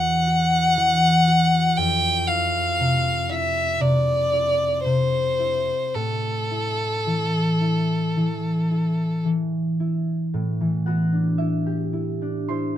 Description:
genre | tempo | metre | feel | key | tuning
classical, impressionist duo for violin and harp | 53-60 BPM | 4/4 | rubato | A dorian | A4 = 440 Hz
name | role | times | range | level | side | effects
warm violin | melody | 0.0-9.2 s | A4 to G5 | -21 LUFS | left 1 dB | none
concert harp | accompaniment | 0.0-12.8 s | E2 to C6 | -22 LUFS | equal | none
room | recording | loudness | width
light reverb | close, detailed microphones | -19 LUFS | side -11 dB against mid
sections
0.0-10.3 A section; 10.3-12.8 B section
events
none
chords
0.0 N.C.; 1.8 F5; 5.9 A5; 10.3 Am11

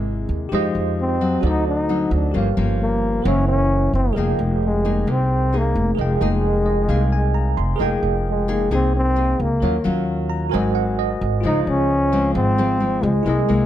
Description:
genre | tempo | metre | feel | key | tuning
bossa nova | 132 BPM | 4/4 | straight | F minor | A4 = 437 Hz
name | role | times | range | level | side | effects
bell-like tine electric piano | accompaniment | 0.0-13.7 s | E4 to C6 | -26 LUFS | right 5 dB | medium stereo tremolo
nylon-string guitar | accompaniment | 0.0-13.7 s | Gb2 to Ab4 | -24 LUFS | left 3 dB | none
upright bass | bass | 0.0-13.7 s | F1 to F2 | -21 LUFS | right 1 dB | none
warm trombone | melody | 1.0-13.7 s | Ab3 to Eb4 | -21 LUFS | left 2 dB | none
room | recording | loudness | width
light reverb | close, detailed microphones | -17 LUFS | side -11 dB against mid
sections
0.0-7.8 A section; 7.8-13.7 A section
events
tine electric piano fill 6.4-7.8, 10.1-11.4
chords
0.0 C7alt; 0.5 Fm9; 1.4 D7b9; 2.3 Gm7b5; 3.3 Gb7#11; 4.2 Fm11; 9.6 Ebm9; 10.5 Ab7; 11.4 Dbmaj7

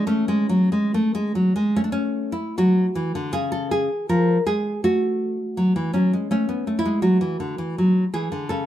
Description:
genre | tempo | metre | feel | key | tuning
classical, baroque-style dance for nylon-string guitar | 69-85 BPM | 3/4 | rubato | F# minor | A4 = 440 Hz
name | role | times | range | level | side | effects
nylon-string guitar | solo | 0.0-8.7 s | C#3 to Bb4 | -19 LUFS | equal | none
room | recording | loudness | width
light reverb | minimal, uncompressed stereo recording | -19 LUFS | side -12 dB against mid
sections
0.0-2.6 A section; 2.6-8.7 A section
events
none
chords
0.1 A; 2.6 F#5; 4.1 Fmadd11; 4.8 F#m; 7.0 D

